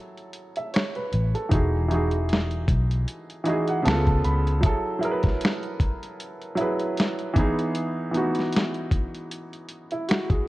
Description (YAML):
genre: lo-fi hip hop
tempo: 77 BPM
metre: 4/4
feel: swing 56% on 16ths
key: unclear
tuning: A4 = 441 Hz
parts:
  - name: warm upright piano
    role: accompaniment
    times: 0.0-10.5 s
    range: C#3 to B5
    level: -26 LUFS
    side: right 1 dB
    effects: none
  - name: dusty soul sampler-style drum kit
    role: drums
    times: 0.2-10.5 s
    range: hi-hat, kick drum, snare drum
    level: -24 LUFS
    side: equal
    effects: overdrive
  - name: vintage muted fingered electric bass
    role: bass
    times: 1.1-4.6 s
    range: E1 to C#2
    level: -23 LUFS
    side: equal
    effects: none
room: light reverb, digital ambience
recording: cassette tape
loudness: -22 LUFS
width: side -18 dB against mid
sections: 0.0-10.5 A section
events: upright piano fill 3.1-4.6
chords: 0.0 F#m9; 1.5 Emaj9; 3.9 C#7b13; 4.6 F#m9; 7.4 Emaj9